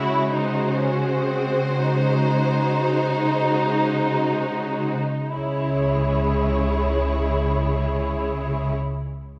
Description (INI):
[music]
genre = classical, slow romantic movement for string orchestra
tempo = free time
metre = none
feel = none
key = C# minor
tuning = A4 = 440 Hz
[part]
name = warm studio violin section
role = melody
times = 0.0-8.7 s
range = B#4 to C#5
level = -31 LUFS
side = equal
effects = none
[part]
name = warm studio violin section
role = second line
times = 0.0-8.7 s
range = B#3 to E4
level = -28 LUFS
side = equal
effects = none
[part]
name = rich studio viola section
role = accompaniment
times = 0.0-8.7 s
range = G#3 to G#4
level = -30 LUFS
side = equal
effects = none
[part]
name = rich studio cello section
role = bass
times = 0.0-8.7 s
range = C#3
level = -28 LUFS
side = equal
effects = none
[part]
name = warm studio double bass section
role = bass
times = 5.3-8.7 s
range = C#2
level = -28 LUFS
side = equal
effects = none
[sound]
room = wet scoring stage reverb, RT60 1.6 s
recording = none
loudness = -22 LUFS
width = mono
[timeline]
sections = 0.0-5.4 A section; 5.4-9.4 B section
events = slowing down 0.0-5.4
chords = 0.0 G#7/C#; 5.4 C#m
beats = free time